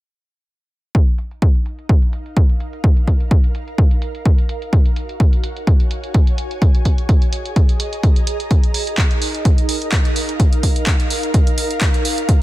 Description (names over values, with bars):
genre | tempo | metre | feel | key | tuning
piano house | 127 BPM | 4/4 | swing 54% on 16ths | Eb minor | A4 = 440 Hz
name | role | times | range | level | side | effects
electronic kick drum | drums | 0.9-12.4 s | none | -14 LUFS | equal | none
punchy analog drum machine | drums | 0.9-12.4 s | handclaps, hi-hat | -24 LUFS | right 1 dB | low-pass filter on hats, low-pass filter on snare
ethereal airy pad | texture | 1.6-12.4 s | Eb4 to Bb5 | -26 LUFS | right 2 dB | ensemble chorus, built-in reverb, sidechain pumping
room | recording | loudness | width
little or no reverb | none | -14 LUFS | side -16 dB against mid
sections
0.9-12.4 A section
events
fade-in on ambient pad 0.9-12.4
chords
0.9 Ebsus2; 4.5 Gbmaj9; 6.6 Ab9sus4; 8.5 Ebsus2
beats
| 0.95 1.42 1.89 2.37 | 2.84 3.31 3.78 4.26 | 4.73 5.20 5.67 6.15 | 6.62 7.09 7.56 8.04 | 8.51 8.98 9.45 9.93 | 10.40 10.87 11.34 11.81 | 12.29